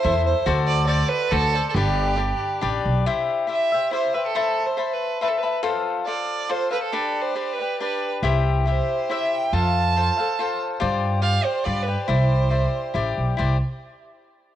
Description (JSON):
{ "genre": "mexican folk, mariachi", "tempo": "140 BPM", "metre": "3/4", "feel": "rubato", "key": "G major, C major from 3.1 s", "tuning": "A4 = 443 Hz", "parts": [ { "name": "clear violin", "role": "melody", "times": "0.0-12.9 s", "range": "G4 to A5", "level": "-25 LUFS", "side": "right 6 dB", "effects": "cassette tape" }, { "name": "cavaquinho", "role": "accompaniment", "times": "0.0-13.6 s", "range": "D4 to B5", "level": "-24 LUFS", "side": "left 6 dB", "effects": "cassette tape" }, { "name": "upright bass", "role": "bass", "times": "0.0-3.0, 8.2-13.6 s", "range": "G1 to G2", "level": "-22 LUFS", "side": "equal", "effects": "none" } ], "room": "light reverb, small room ambience", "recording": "home recording on cassette", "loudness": "-20 LUFS", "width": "side -11 dB against mid", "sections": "0.0-3.1 A section; 3.1-13.4 B section; 13.4-14.6 C section", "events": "none", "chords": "0.5 D7; 1.7 G; 3.1 C; 4.4 Amadd9; 5.6 F; 6.9 G; 8.2 C; 9.5 F; 10.8 G7sus4; 11.7 G7; 12.1 Cadd9", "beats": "0.03 | 0.46 0.88 1.31 | 1.74 2.17 2.62 | 3.06 3.50 3.93 | 4.36 4.78 5.21 | 5.63 6.06 6.49 | 6.92 7.35 7.79 | 8.23 8.66 9.10 | 9.53 9.96 10.38 | 10.80 11.23 11.65 | 12.08 12.51 12.95 | 13.39" }